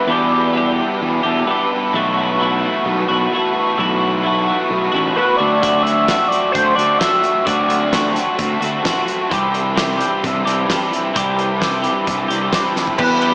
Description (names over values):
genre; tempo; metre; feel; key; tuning
indie rock; 130 BPM; 4/4; straight; unclear; A4 = 440 Hz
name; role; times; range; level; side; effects
sync lead; melody; 0.0-0.8, 5.2-8.2, 13.0-13.3 s; B4 to E5; -17 LUFS; equal; chorus
overdriven electric guitar; riff; 0.0-13.3 s; E2 to F#4; -19 LUFS; equal; ensemble chorus, slapback echo, analog delay
twelve-string electric guitar; riff; 0.0-13.3 s; E3 to G4; -20 LUFS; equal; slapback echo
fuzz picked electric bass; bass; 0.1-13.3 s; A1 to E2; -21 LUFS; equal; overdrive
loose indie drum kit; drums; 5.6-13.3 s; crash cymbal, hi-hat, kick drum, ride cymbal, snare drum, toms; -23 LUFS; equal; none
glockenspiel with rubber mallets; second line; 13.0-13.3 s; B5; -25 LUFS; equal; none
room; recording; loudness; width
wet recital hall reverb, RT60 1.7 s, small room ambience; big arena sound, small speaker sound; -14 LUFS; side -33 dB against mid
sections
0.0-13.0 A section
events
drum fill 12.8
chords
0.0 Em7; 1.9 B7sus4; 5.4 D7; 9.3 Cadd9